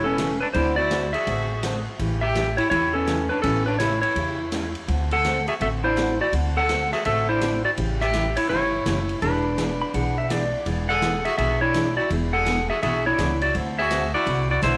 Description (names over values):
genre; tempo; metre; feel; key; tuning
country, western swing; 166 BPM; 4/4; swing 64% on 8ths; A major; A4 = 440 Hz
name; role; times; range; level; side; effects
clean lap steel guitar; melody; 0.0-14.8 s; C#4 to F#5; -25 LUFS; equal; tape echo
clear fiddle; second line; 0.0-14.8 s; B3 to A4; -35 LUFS; equal; none
picked steel-string acoustic guitar; accompaniment; 0.0-14.7 s; C#3 to A4; -33 LUFS; equal; none
upright bass; bass; 0.0-14.8 s; E1 to E2; -30 LUFS; equal; none
vintage drum kit; drums; 0.2-14.7 s; hi-hat, ride cymbal, snare drum; -36 LUFS; equal; none
pedal steel guitar; second line; 9.8-10.8 s; D5 to B5; -31 LUFS; equal; none
room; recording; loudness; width
moderate echo chamber reverb, RT60 1.7 s, studio reverb; none; -23 LUFS; mono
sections
0.0-14.8 A section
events
none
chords
0.0 A9; 0.5 D9; 2.0 A9; 4.9 D9; 7.8 A7; 9.2 E9; 13.5 D9